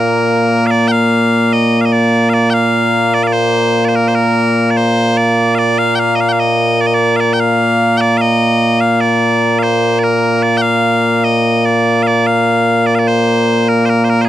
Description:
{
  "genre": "scottish traditional, Scottish pipe music",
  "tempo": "74 BPM",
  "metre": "3/4",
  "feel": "straight",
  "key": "Bb major",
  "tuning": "A4 = 438 Hz",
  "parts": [
    { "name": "loud bright bagpipes", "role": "solo", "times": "0.0-14.3 s", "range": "Bb2 to G5", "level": "-10 LUFS", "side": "equal", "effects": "none" }
  ],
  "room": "little or no reverb",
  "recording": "dry, close 1970s-style studio recording",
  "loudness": "-10 LUFS",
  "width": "side -12 dB against mid",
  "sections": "0.7-14.3 A section",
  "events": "none",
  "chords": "none"
}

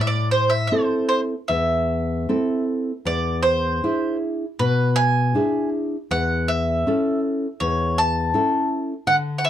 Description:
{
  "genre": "fado-style ballad",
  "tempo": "76-83 BPM",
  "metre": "4/4",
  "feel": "rubato",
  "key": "unclear",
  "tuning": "A4 = 440 Hz",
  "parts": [
    { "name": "bowl-back mandolin", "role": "melody", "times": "0.0-9.5 s", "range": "B4 to A5", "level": "-22 LUFS", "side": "right 1 dB", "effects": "none" },
    { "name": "nylon-string guitar", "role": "accompaniment", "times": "0.0-9.5 s", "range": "E2 to A4", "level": "-22 LUFS", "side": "left 1 dB", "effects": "none" }
  ],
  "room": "moderate small room ambience, RT60 0.5 s",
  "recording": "dark, warm production",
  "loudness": "-19 LUFS",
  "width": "side -10 dB against mid",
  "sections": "0.0-9.5 A section",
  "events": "none",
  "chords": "0.0 Am; 3.1 E7; 6.1 A/E"
}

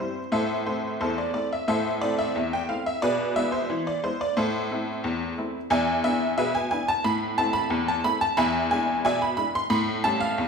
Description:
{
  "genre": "ragtime piano",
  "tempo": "90 BPM",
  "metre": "2/4",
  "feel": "straight",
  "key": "unclear",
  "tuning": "A4 = 436 Hz",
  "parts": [
    { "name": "honky-tonk upright piano", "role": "solo", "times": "0.0-10.5 s", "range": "E2 to C6", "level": "-23 LUFS", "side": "equal", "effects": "none" }
  ],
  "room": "wet recital hall reverb, RT60 1.4 s",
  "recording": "recorded in a church or concert hall",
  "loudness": "-23 LUFS",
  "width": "side -5 dB against mid",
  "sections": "0.0-10.5 A section",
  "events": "none",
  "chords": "0.3 Am; 3.0 E/B; 4.4 Am; 5.7 E7; 7.0 Am; 8.4 E7; 9.7 A7"
}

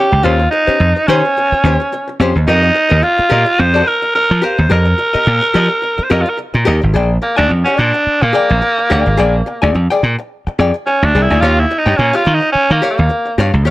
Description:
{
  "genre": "funk",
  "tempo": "107 BPM",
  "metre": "4/4",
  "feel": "swing 56% on 16ths",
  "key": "unclear",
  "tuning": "A4 = 440 Hz",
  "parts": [
    { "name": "raspy tenor saxophone", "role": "melody", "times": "0.0-13.4 s", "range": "Bb3 to C5", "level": "-13 LUFS", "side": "right 1 dB", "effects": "none" },
    { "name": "archtop guitar, miked and amplified", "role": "accompaniment", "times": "0.0-13.7 s", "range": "Db4 to Ab5", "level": "-18 LUFS", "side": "left 3 dB", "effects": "none" },
    { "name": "slap bass", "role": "bass", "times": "0.1-13.7 s", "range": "Ab1 to F3", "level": "-13 LUFS", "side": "equal", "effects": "none" }
  ],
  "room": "light reverb, studio ambience",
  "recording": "none",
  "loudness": "-11 LUFS",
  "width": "side -17 dB against mid",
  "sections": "0.0-6.9 A section; 6.9-13.7 B section",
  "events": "tenor saxophone solo 6.9-13.7",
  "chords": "0.0 Eb13; 2.5 F9sus4; 6.9 Bb13; 11.4 Eb9"
}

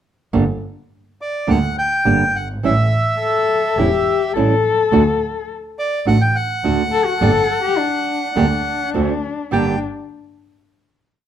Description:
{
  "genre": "tango",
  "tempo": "105 BPM",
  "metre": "4/4",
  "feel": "rubato",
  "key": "G harmonic minor",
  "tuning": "A4 = 440 Hz",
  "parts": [
    { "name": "nylon-string guitar", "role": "accompaniment", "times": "0.3-9.8 s", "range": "G2 to G4", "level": "-19 LUFS", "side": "right 4 dB", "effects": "none" },
    { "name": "clear double bass", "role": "bass", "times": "0.3-9.8 s", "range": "E1 to D2", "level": "-20 LUFS", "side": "right 1 dB", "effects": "none" },
    { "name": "bandoneon", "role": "melody", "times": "1.2-9.8 s", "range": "D5 to G5", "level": "-20 LUFS", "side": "right 1 dB", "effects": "none" },
    { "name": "dark cello", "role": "second line", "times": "3.2-9.8 s", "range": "D4 to A4", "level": "-19 LUFS", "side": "left 6 dB", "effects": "none" }
  ],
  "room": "light reverb",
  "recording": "none",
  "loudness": "-15 LUFS",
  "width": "side -10 dB against mid",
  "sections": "0.3-9.5 A section; 9.5-11.3 final chord",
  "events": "none",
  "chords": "0.3 Gm; 2.6 A7; 4.9 D; 7.2 G5; 8.9 D7; 9.5 Gm"
}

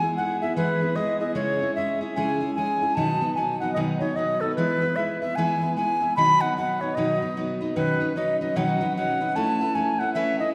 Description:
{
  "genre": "celtic folk",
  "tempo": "150 BPM",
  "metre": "4/4",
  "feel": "swing 61% on 8ths",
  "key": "B mixolydian",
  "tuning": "A4 = 444 Hz",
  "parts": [
    { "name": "bright reedy baroque flute", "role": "melody", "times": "0.0-10.5 s", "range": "A4 to B5", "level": "-26 LUFS", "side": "equal", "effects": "none" },
    { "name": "picked steel-string acoustic guitar", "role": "accompaniment", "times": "0.0-10.5 s", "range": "B2 to B4", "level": "-29 LUFS", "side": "equal", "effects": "none" }
  ],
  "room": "wet scoring stage reverb, RT60 1.9 s",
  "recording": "recorded in a church or concert hall",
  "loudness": "-24 LUFS",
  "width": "mono",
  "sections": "0.0-7.8 A section; 7.8-10.5 A section",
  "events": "none",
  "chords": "0.0 E; 1.4 C#m; 3.0 B; 4.6 E; 6.2 B; 7.8 Badd9; 9.4 Aadd9"
}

